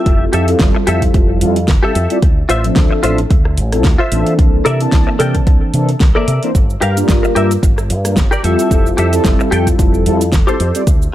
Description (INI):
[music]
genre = nu-disco, nu disco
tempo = 111 BPM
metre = 4/4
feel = swing 55% on 16ths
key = unclear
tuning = A4 = 441 Hz
[part]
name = mellow synth brass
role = accompaniment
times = 0.0-10.8 s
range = E3 to A5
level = -17 LUFS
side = equal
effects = chorus, dub echo
[part]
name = direct-recorded clean electric guitar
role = riff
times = 0.0-10.8 s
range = F4 to G5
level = -18 LUFS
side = left 1 dB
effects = ensemble chorus, dub echo
[part]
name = fingered electric bass with an envelope filter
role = bass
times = 0.1-11.1 s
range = F1 to C3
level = -16 LUFS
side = equal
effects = sidechain pumping
[part]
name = electronic kick drum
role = drums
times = 0.1-11.0 s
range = none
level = -13 LUFS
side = equal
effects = none
[part]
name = pop drum kit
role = drums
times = 0.1-11.1 s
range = hi-hat, rim click, shaker, snare drum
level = -21 LUFS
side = equal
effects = none
[sound]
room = little or no reverb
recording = none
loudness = -11 LUFS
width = side -13 dB against mid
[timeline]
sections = 0.0-11.1 A section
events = none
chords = 0.0 Fmaj9; 2.2 Dm9; 4.4 C13; 6.5 Gm7; 8.4 Fmaj9